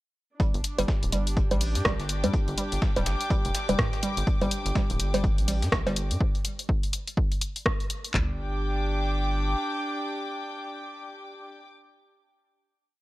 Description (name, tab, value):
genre	minimal techno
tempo	124 BPM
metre	4/4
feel	swing 60% on 16ths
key	unclear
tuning	A4 = 440 Hz
part	hollow square pluck	riff	0.4-8.4 s	G3	-33 LUFS	left 1 dB	chorus, sidechain pumping, analog delay
part	dusty soul sampler-style drum kit	drums	0.4-6.1 s	hi-hat, snare drum	-41 LUFS	equal	sidechain pumping on hats, high-pass filter on hats, high-pass filter on snare, high-pass filter on room
part	house drum kit	drums	0.4-8.3 s	handclaps, kick drum, toms	-27 LUFS	equal	none
part	warm studio string section	texture	0.4-11.7 s	D4 to D6	-33 LUFS	equal	sidechain pumping
part	rubbery square bass	bass	0.5-9.6 s	D1 to G2	-28 LUFS	equal	sidechain pumping
part	house drum kit	drums	0.5-8.1 s	hi-hat, rim click	-30 LUFS	equal	none
part	electronic bongos and toms	percussion	0.8-5.9 s	none	-30 LUFS	right 3 dB	analog delay
room	digital ambience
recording	dry, gritty hardware recording, cassette tape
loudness	-24 LUFS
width	side -18 dB against mid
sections	0.4-8.1 drop; 8.1-12.0 final chord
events	drop 0.4-8.1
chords	0.4 G5